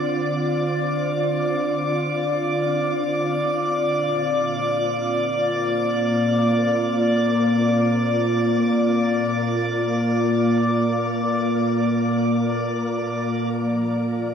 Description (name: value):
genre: ambient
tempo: free time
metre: none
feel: none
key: unclear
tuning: A4 = 439 Hz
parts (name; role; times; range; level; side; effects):
- glassy FM pad; sustained chords; 0.0-14.3 s; Bb2 to D5; -20 LUFS; equal; ensemble chorus, built-in reverb
- drifting glass-harmonics texture; texture; 0.0-14.3 s; D5 to D6; -26 LUFS; equal; chorus, built-in reverb
room: wet shimmer reverb, RT60 7.7 s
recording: dark, warm production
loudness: -19 LUFS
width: side -7 dB against mid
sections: 0.0-13.5 A section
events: none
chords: 0.0 Dm7; 3.9 Bb; 13.5 Fsus2